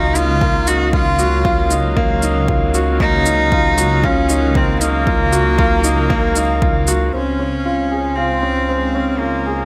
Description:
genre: piano and strings electronica.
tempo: 116 BPM.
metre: 4/4.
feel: straight.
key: unclear.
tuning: A4 = 436 Hz.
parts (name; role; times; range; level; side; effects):
clear cello; melody; 0.0-9.7 s; Bb3 to Gb4; -21 LUFS; equal; delay.
warm chamber string section; sustained chords; 0.0-9.7 s; Db3 to F5; -27 LUFS; equal; sidechain pumping.
bright upright piano; riff; 0.0-9.7 s; Bb3 to Ab4; -22 LUFS; equal; low-pass filter, delay.
dark detuned saw bass; bass; 0.0-9.7 s; Db2; -22 LUFS; equal; sidechain pumping.
shaker; drums; 0.2-7.0 s; none; -25 LUFS; equal; overdrive, low-pass filter on perc.
electronic kick drum; drums; 0.4-6.7 s; none; -22 LUFS; equal; overdrive.
room: light reverb.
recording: none.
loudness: -16 LUFS.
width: mono.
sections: 0.0-7.1 A section; 7.1-9.7 B section.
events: filter sweep on upright piano 7.1-9.7.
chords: 0.0 Ebmadd9/Db; 7.1 Dbmaj7.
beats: 0.41 | 0.93 1.45 1.96 2.48 | 3.00 3.52 4.03 4.55 | 5.07 5.58 6.10 6.62 | 7.14 7.65 8.17 8.69 | 9.21.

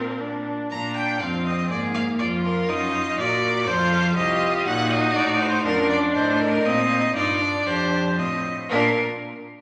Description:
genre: quick classical-period movement for string quartet.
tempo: 120 BPM.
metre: 4/4.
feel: straight.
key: Bb major.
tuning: A4 = 440 Hz.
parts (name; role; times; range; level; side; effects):
clear violin; melody; 0.0-9.0 s; D4 to Bb5; -26 LUFS; equal; none.
rich violin; second line; 0.0-9.0 s; D4 to Bb4; -32 LUFS; equal; none.
clear viola; accompaniment; 0.0-9.0 s; Bb3 to Gb4; -28 LUFS; equal; none.
rich cello; bass; 0.0-9.0 s; C2 to Bb2; -29 LUFS; equal; none.
room: wet recital hall reverb, RT60 1.6 s.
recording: none.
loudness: -22 LUFS.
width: mono.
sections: 0.7-8.7 A section.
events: slowing down 3.7-8.7.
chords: 0.0 Bb; 1.7 Bb5/Ab; 2.7 Ebm/Gb; 3.7 F7; 4.7 Ebm; 6.6 F7; 8.7 Bb.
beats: 0.20 | 0.71 1.21 1.71 2.20 | 2.69 3.19 3.68 4.17 | 4.66 5.15 5.64 6.14 | 6.65 7.15 7.66 8.18 | 8.71.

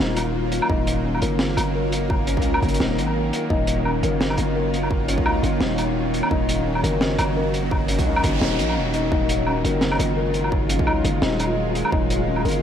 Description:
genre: half-time drum and bass.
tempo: 171 BPM.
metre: 4/4.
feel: swing 55% on 16ths, half-time.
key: Eb minor.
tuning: A4 = 444 Hz.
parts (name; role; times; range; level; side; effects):
bowed-like drone; sustained chords; 0.0-12.6 s; Eb3 to Bb4; -25 LUFS; left 1 dB; built-in reverb, sidechain pumping.
felt-muted upright piano; arpeggios; 0.0-12.6 s; Db4 to Bb4; -27 LUFS; left 4 dB; vintage 12-bit sampler grit, diffuse ambient delay.
growling 808-style bass; bass; 0.0-12.6 s; Eb1 to Db2; -25 LUFS; right 1 dB; none.
crunchy breakbeat drum kit; drums; 0.0-12.5 s; hi-hat, snare drum, woodblock; -26 LUFS; equal; none.
flickering grainy texture; texture; 0.1-12.6 s; Db4 to F4; -33 LUFS; equal; none.
electronic kick drum; drums; 0.7-12.0 s; none; -24 LUFS; right 1 dB; distortion.
noise sweep; sound effects; 8.0-9.1 s; none; -35 LUFS; right 3 dB; none.
room: moderate huge ambient reverb, RT60 8.5 s.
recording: dreamy mix soaked in reverb.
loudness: -19 LUFS.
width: side -9 dB against mid.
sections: 0.0-12.6 A section.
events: noise sweep 8.0-9.1.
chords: 0.0 Ebmadd9.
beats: 0.34 | 0.70 1.05 1.40 1.75 | 2.10 2.45 2.80 3.15 | 3.50 3.85 4.20 4.55 | 4.91 5.26 5.61 5.96 | 6.31 6.66 7.01 7.36 | 7.71 8.06 8.41 8.77 | 9.12 9.47 9.82 10.17 | 10.52 10.87 11.22 11.57 | 11.92 12.28.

